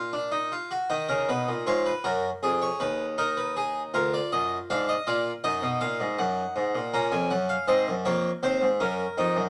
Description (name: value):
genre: classical, baroque-style 3-part fugue for harpsichord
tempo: 80 BPM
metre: 4/4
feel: straight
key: Eb minor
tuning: A4 = 440 Hz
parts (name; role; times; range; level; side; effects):
- harpsichord; solo; 0.0-9.5 s; D2 to Bb5; -27 LUFS; equal; none
room: moderate studio reverb, RT60 0.8 s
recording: none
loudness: -27 LUFS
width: mono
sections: 0.9-9.5 A section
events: none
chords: 0.0 Bb; 0.9 Ebm; 2.4 Fm7b5; 4.0 Bb7/D; 5.5 Ebm/Gb; 6.9 Bbm; 8.4 Cm7b5/Eb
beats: 0.13 | 0.91 1.67 2.44 3.19 | 3.95 4.71 5.45 6.20 | 6.95 7.69 8.44 9.19